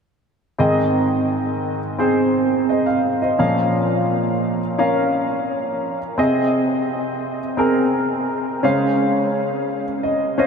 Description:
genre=pop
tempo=86 BPM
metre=4/4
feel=straight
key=Ab major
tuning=A4 = 440 Hz
part: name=clear baby grand piano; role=accompaniment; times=0.6-10.5 s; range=Ab2 to F5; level=-17 LUFS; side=equal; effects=analog chorus
room=wet huge ambient reverb, RT60 6.8 s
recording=dreamy mix soaked in reverb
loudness=-17 LUFS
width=side -6 dB against mid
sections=0.6-10.5 A section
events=grand piano fill 9.7-10.5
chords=0.6 Ab; 3.4 Bbm; 6.2 Ab/C; 8.6 Dbmaj7

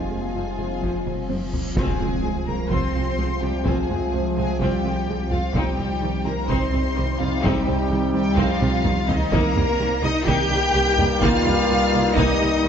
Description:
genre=cinematic, hybrid orchestral and electronic film score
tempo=127 BPM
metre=4/4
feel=straight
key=unclear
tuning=A4 = 445 Hz
part: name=rich symphonic violin section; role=melody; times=0.0-12.7 s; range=Eb5 to G6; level=-30 LUFS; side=left 3 dB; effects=none
part: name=warm symphonic violin section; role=second line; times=0.0-12.7 s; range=Eb4 to G5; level=-28 LUFS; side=left 3 dB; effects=none
part: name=rich symphonic viola section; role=accompaniment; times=0.0-12.7 s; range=Eb3 to F4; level=-29 LUFS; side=right 1 dB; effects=none
part: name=dark French horn section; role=sustained chords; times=0.0-12.7 s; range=Bb3 to F4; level=-29 LUFS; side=left 4 dB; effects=none
part: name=ethereal airy pad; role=sustained chords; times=0.0-12.7 s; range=F3 to C5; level=-29 LUFS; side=right 1 dB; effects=ensemble chorus, built-in reverb
part: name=warm trombone section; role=sustained chords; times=0.0-12.7 s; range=G2 to G3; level=-32 LUFS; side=right 2 dB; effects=none
part: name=punchy sub bass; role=bass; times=0.0-12.7 s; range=F1 to C2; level=-29 LUFS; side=equal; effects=none
part: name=reverse cymbal and impact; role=sound effects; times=1.5-3.7 s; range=none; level=-32 LUFS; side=equal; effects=none
part: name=soft round pluck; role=arpeggios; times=0.1-12.7 s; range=C3 to F4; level=-32 LUFS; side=right 3 dB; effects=none
part: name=rich symphonic cello section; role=bass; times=0.1-12.7 s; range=F2 to G4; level=-28 LUFS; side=equal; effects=none
part: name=rich symphonic double bass section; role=bass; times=0.1-12.7 s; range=F1 to C2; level=-28 LUFS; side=right 3 dB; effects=none
part: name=taiko ensemble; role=drums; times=0.8-12.6 s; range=none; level=-27 LUFS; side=equal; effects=none
room=moderate scoring stage reverb, RT60 1.6 s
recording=nothing above 7.7 kHz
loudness=-19 LUFS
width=side -8 dB against mid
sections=0.0-1.8 A section; 1.8-12.7 B section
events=drum fill 1.1-1.8, 8.6-9.3; reverse cymbal 1.5; impact 1.8-3.7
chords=0.0 Fm; 1.8 Fm/C; 5.5 Cm

